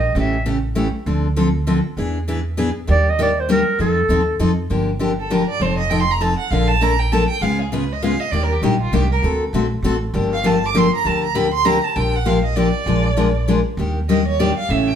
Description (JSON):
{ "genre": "acoustic string swing (jazz manouche)", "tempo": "198 BPM", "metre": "3/4", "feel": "swing 60% on 8ths", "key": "G minor from 4.7 s", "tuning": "A4 = 440 Hz", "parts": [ { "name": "clear clarinet", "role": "melody", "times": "0.0-0.5, 2.9-4.4 s", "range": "A4 to E5", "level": "-19 LUFS", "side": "right 2 dB", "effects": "none" }, { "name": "upright bass", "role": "bass", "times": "0.0-15.0 s", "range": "F1 to F2", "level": "-21 LUFS", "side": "right 1 dB", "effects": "none" }, { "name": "picked steel-string acoustic guitar", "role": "accompaniment", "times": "0.2-14.9 s", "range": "C#3 to Bb4", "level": "-19 LUFS", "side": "left 2 dB", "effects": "none" }, { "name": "clear violin", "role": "second line", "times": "5.2-15.0 s", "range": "Eb4 to D6", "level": "-21 LUFS", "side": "right 4 dB", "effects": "none" } ], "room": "wet studio reverb, RT60 0.8 s", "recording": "band playing live in one room", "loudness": "-16 LUFS", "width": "side -9 dB against mid", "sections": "0.0-4.7 A section; 4.7-12.0 B section; 12.0-15.0 B section", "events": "violin solo 4.7-15.0", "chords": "0.2 A7; 1.1 Dm7; 2.0 E7; 2.9 Ebmaj7; 3.8 F7; 4.7 Gm7; 5.6 F7; 6.5 Bbmaj7; 7.4 C#7; 8.3 Ebmaj7; 9.2 D7; 10.1 Gm7; 12.0 Bb6; 12.9 Bb7; 13.8 Ebmaj7" }